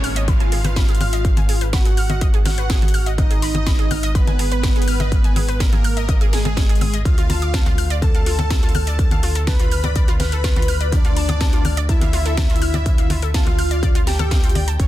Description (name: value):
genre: melodic techno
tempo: 124 BPM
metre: 4/4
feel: straight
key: unclear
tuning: A4 = 440 Hz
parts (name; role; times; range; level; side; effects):
- wide unison lead; melody; 0.0-14.9 s; G#3 to B4; -27 LUFS; equal; lush chorus, sidechain pumping, digital delay
- soft supersaw; second line; 0.0-14.9 s; G#4 to B5; -31 LUFS; equal; cassette tape, sidechain pumping, digital delay
- analog pluck; arpeggios; 0.0-14.8 s; F4 to E#6; -28 LUFS; right 1 dB; chorus, sidechain pumping, digital delay
- round analog bass; bass; 0.0-14.9 s; G#1 to D2; -21 LUFS; equal; tube saturation, sidechain pumping
- techno drum kit; drums; 0.0-14.9 s; congas, hi-hat, snare drum; -26 LUFS; left 2 dB; sidechain pumping on hats, sidechain pumping on perc, sidechain pumping on cymbals
- downlifter; sound effects; 0.0-3.2 s; none; -34 LUFS; equal; none
- electronic kick drum; drums; 0.3-14.9 s; none; -18 LUFS; equal; distortion
room: little or no reverb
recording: dense, heavily limited modern master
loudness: -15 LUFS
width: side -14 dB against mid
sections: 0.0-14.9 A section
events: none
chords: 0.0 G#m; 7.1 Dm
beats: 0.28 0.76 | 1.25 1.73 2.21 2.70 | 3.18 3.67 4.15 4.63 | 5.12 5.60 6.09 6.57 | 7.05 7.54 8.02 8.51 | 8.99 9.47 9.96 10.44 | 10.93 11.41 11.89 12.38 | 12.86 13.34 13.83 14.31 | 14.80